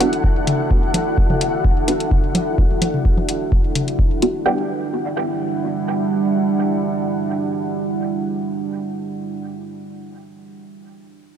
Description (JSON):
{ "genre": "dub techno", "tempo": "128 BPM", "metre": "4/4", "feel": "straight", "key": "E minor", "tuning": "A4 = 444 Hz", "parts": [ { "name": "deep dark ambient pad", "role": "sustained chords", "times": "0.0-9.0 s", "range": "G3 to F#5", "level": "-22 LUFS", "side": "right 2 dB", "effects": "chorus, built-in reverb, sidechain pumping" }, { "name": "filtered dub chord stab", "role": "stabs", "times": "0.0-9.1 s", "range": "G3 to G4", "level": "-23 LUFS", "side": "right 1 dB", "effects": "phaser, sidechain pumping, dub echo" }, { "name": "electronic hi-hat", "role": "drums", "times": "0.0-4.3 s", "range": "none", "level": "-26 LUFS", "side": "left 3 dB", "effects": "none" }, { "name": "flickering grainy texture", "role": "texture", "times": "0.0-4.5 s", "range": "E4 to F#5", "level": "-29 LUFS", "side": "left 4 dB", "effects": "built-in reverb, sidechain pumping" }, { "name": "electronic kick drum", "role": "drums", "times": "0.2-4.1 s", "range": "none", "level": "-17 LUFS", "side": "equal", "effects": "none" }, { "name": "electronic toms and congas", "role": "percussion", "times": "0.5-3.9 s", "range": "none", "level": "-23 LUFS", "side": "left 1 dB", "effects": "overdrive, sidechain pumping on toms, sidechain pumping on perc" }, { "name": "filtered dub chord stab", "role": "riff", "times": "0.9-9.1 s", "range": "E4 to F#5", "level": "-31 LUFS", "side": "left 1 dB", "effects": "none" } ], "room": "little or no reverb", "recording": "dry, gritty hardware recording", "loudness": "-17 LUFS", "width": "side -8 dB against mid", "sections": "0.0-4.5 A section; 4.5-8.2 B section", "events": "filter sweep on synth stab 0.0-4.5", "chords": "0.0 Em9" }